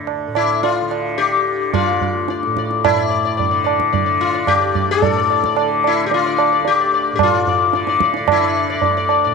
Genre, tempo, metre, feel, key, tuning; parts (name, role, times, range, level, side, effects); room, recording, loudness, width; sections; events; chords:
indian classical, Hindustani; 110 BPM; 5/4; straight; D raga darbari; A4 = 439 Hz
sitar; melody; 0.0-9.3 s; D4 to D5; -16 LUFS; left 8 dB
tanpura; drone; 0.0-9.3 s; D2 to D3; -24 LUFS; right 2 dB
tabla; percussion; 0.1-9.3 s; -20 LUFS; right 11 dB
light reverb, studio ambience; 1960s-style stereo with parts hard left and right; -14 LUFS; side -4 dB against mid
0.0-2.8 A section; 2.8-9.3 B section